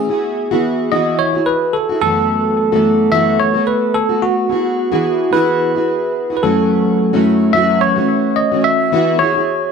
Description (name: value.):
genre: pop.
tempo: 109 BPM.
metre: 4/4.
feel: swing 55% on 16ths.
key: E major.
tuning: A4 = 437 Hz.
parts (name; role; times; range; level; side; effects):
barky tine electric piano; melody; 0.0-9.7 s; F#4 to E5; -16 LUFS; equal; medium stereo tremolo, plate reverb, tape echo.
fingerpicked plugged-in steel-string acoustic guitar; accompaniment; 0.0-9.7 s; F#2 to A4; -16 LUFS; equal; double-tracked left and right, plate reverb.
room: wet studio reverb, RT60 0.6 s.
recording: none.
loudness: -13 LUFS.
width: side -6 dB against mid.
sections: 0.1-8.9 A section.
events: none.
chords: 0.1 Eadd9; 2.0 B7sus4/F#; 4.5 Eadd9; 6.4 F#m7; 8.9 Eadd9.